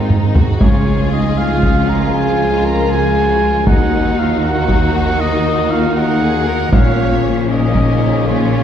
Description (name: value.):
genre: cinematic, epic orchestral film score.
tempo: 78 BPM (dotted quarters).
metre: 12/8.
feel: straight.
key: Db major.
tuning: A4 = 439 Hz.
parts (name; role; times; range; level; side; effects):
warm symphonic violin section; melody; 0.0-8.6 s; Db4 to F4; -24 LUFS; left 4 dB; none.
warm symphonic violin section; second line; 0.0-8.6 s; Eb4 to Db5; -25 LUFS; left 2 dB; none.
warm symphonic viola section; accompaniment; 0.0-8.6 s; Eb3 to Db4; -23 LUFS; left 2 dB; none.
mellow French horn section; sustained chords; 0.0-8.6 s; Bb3 to Bb4; -21 LUFS; left 2 dB; none.
mellow trombone section; sustained chords; 0.0-8.6 s; Db3 to C4; -24 LUFS; right 1 dB; none.
mellow trumpet; stabs; 0.0-8.6 s; Bb4 to Bb5; -20 LUFS; right 1 dB; none.
rich symphonic cello section; bass; 0.0-8.6 s; Db2 to Bb2; -20 LUFS; equal; none.
rich symphonic double bass section; bass; 0.0-8.6 s; Ab1 to Eb2; -20 LUFS; right 2 dB; none.
solo taiko drums; drums; 0.1-8.2 s; none; -16 LUFS; equal; none.
room: wet concert hall reverb, RT60 2.3 s.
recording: heard from further back in the room.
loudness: -12 LUFS.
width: side -9 dB against mid.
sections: 0.0-8.6 A section.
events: drum fill 0.0-0.6.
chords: 0.0 Abadd9; 0.6 Db; 3.7 Ebm; 6.7 Bbm.